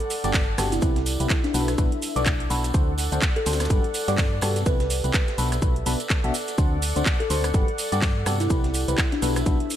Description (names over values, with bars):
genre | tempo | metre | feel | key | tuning
piano house | 125 BPM | 4/4 | swing 58% on 16ths | unclear | A4 = 440 Hz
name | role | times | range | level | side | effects
house drum kit | drums | 0.0-9.8 s | handclaps, hi-hat, rim click, shaker | -28 LUFS | right 2 dB | none
warbly tape-like pad | texture | 0.0-9.8 s | G4 to F#5 | -34 LUFS | right 1 dB | chorus, built-in reverb, sidechain pumping
breakbeat sampler-style drum kit | drums | 0.1-9.8 s | hi-hat, shaker, snare drum | -40 LUFS | left 1 dB | none
tambourine and congas | percussion | 0.1-9.8 s | none | -37 LUFS | right 3 dB | none
barking FM electric piano | riff | 0.2-9.6 s | G2 to E5 | -29 LUFS | left 1 dB | phaser, sidechain pumping
solid FM bass | bass | 0.2-9.6 s | G1 to G2 | -26 LUFS | equal | sidechain pumping
electronic kick drum | drums | 0.3-9.6 s | none | -23 LUFS | equal | none
buzzing kalimba | melody | 0.7-9.3 s | D4 to D5 | -30 LUFS | left 1 dB | dub echo
room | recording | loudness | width
little or no reverb | none | -20 LUFS | side -11 dB against mid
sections
0.0-9.8 A section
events
none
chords
0.0 Gmaj7; 0.8 Cmaj7; 1.5 Bm7; 2.7 D7; 3.7 Gmaj7; 4.7 Cmaj7; 5.4 Bm7; 6.6 D7; 7.5 Gmaj7; 8.5 Cmaj7; 9.2 Bm7